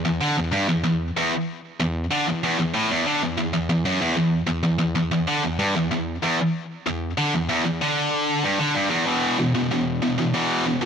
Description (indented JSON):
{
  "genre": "metal",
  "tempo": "95 BPM",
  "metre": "4/4",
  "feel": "straight",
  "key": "E minor",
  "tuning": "A4 = 440 Hz",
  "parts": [
    { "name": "heavy high-gain guitar", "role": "solo", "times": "0.0-10.9 s", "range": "E2 to E3", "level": "-20 LUFS", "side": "equal", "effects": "distortion, ping-pong delay" }
  ],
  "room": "light reverb",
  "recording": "none",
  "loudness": "-20 LUFS",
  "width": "side -7 dB against mid",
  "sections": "0.0-9.1 A section; 9.1-10.9 B section",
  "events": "none",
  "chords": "0.0 N.C.; 9.1 E5"
}